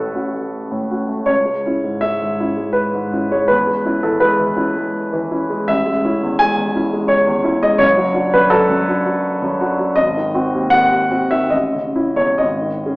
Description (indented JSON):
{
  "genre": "classical, romantic character piece for solo piano",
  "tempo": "62-87 BPM",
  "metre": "3/4",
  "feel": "rubato",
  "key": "unclear",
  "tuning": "A4 = 440 Hz",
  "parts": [
    { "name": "warm grand piano", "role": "solo", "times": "0.0-13.0 s", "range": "F#1 to G#5", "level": "-14 LUFS", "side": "equal", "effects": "none" }
  ],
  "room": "wet large studio reverb, RT60 1.4 s",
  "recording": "heard from further back in the room, small speaker sound",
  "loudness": "-14 LUFS",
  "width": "side -24 dB against mid",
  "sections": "0.0-13.0 A section",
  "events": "none",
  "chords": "0.0 F#m/A; 1.3 C#m; 3.5 C#m/E; 5.7 Amaj7; 7.8 D/F#; 10.0 G#7; 11.5 A; 12.4 G#sus4",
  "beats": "0.54 | 1.30 2.05 2.79 | 3.52 4.25 4.97 | 5.70 6.41 7.11 | 7.80 8.52 9.24 | 9.97 10.72 11.53 | 12.41"
}